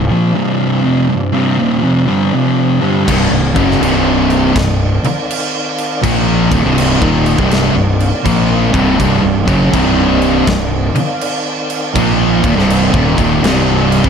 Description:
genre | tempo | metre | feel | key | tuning
stoner and doom metal | 81 BPM | 4/4 | swing 65% on 8ths | C minor | A4 = 435 Hz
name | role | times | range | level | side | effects
overdriven tonewheel organ | sustained chords | 0.0-14.1 s | C3 to D5 | -23 LUFS | left 1 dB | slow rotary speaker, chorus vibrato
thick fuzz guitar | riff | 0.0-14.1 s | C2 to Bb3 | -16 LUFS | left 8 dB | distortion
thick fuzz guitar | riff | 0.0-14.1 s | C2 to Bb3 | -15 LUFS | right 9 dB | distortion
fuzz fingered electric bass | bass | 0.0-14.1 s | C1 to Bb1 | -18 LUFS | equal | overdrive
tight distorted guitar | riff | 3.1-14.1 s | C2 to Bb3 | -18 LUFS | left 1 dB | distortion
big rock drum kit | drums | 3.1-14.1 s | crash cymbal, kick drum, snare drum | -19 LUFS | equal | none
room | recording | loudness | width
light reverb, small room ambience | none | -11 LUFS | side -7 dB against mid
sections
0.0-3.1 A section; 3.1-14.1 B section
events
none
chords
0.0 Cm

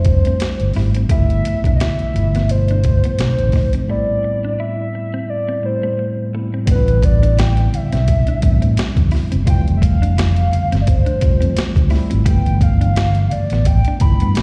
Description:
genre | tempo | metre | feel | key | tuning
R&B, neo-soul | 86 BPM | 4/4 | swing 56% on 16ths | A minor | A4 = 440 Hz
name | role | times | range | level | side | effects
hollow clarinet-like synth lead | melody | 0.0-14.4 s | B4 to B5 | -26 LUFS | equal | chorus, phaser, slapback echo
tine electric piano | accompaniment | 0.0-14.4 s | A2 to G4 | -26 LUFS | equal | slapback echo
fingered electric bass | bass | 0.0-14.4 s | F1 to A2 | -18 LUFS | equal | none
boom bap sampler-style drum kit | drums | 0.0-14.4 s | hi-hat, kick drum, snare drum | -20 LUFS | equal | none
clean electric guitar | second line | 0.1-14.4 s | A3 to G4 | -33 LUFS | equal | spring reverb, slapback echo
congas | percussion | 1.3-14.4 s | none | -29 LUFS | equal | none
room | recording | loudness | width
little or no reverb | live gig heard through the venue's PA, recital hall reverb | -16 LUFS | mono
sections
0.0-6.7 A section; 6.7-14.4 B section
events
break 3.9-6.7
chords
0.0 Fmaj7; 1.1 G13; 3.2 B7b9; 3.9 Am9; 9.5 Fmaj7; 12.3 G13

